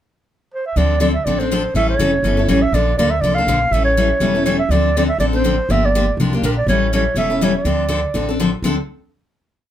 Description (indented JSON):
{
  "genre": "acoustic string swing (jazz manouche)",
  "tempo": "244 BPM",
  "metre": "4/4",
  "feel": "swing 55% on 8ths",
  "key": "D minor",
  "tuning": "A4 = 440 Hz",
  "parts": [
    { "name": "breathy clarinet", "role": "melody", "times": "0.5-8.4 s", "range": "Bb4 to F5", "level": "-19 LUFS", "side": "right 2 dB", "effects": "none" },
    { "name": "picked steel-string acoustic guitar", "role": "accompaniment", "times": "0.8-8.8 s", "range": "D3 to A4", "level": "-18 LUFS", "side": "left 3 dB", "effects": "none" },
    { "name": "upright bass", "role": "bass", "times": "0.8-8.8 s", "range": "E1 to D2", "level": "-20 LUFS", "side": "equal", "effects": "none" }
  ],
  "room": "light reverb",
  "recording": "none",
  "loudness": "-14 LUFS",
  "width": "side -11 dB against mid",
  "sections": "0.0-0.8 pickup bar; 0.8-8.6 A section; 8.6-9.6 final chord",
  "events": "none",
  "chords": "0.0 N.C.; 0.8 Dm7; 1.8 A7; 2.7 Bbmaj7; 3.7 A7; 4.7 Dm7; 5.7 Gm7; 6.7 A7; 7.7 Dm7"
}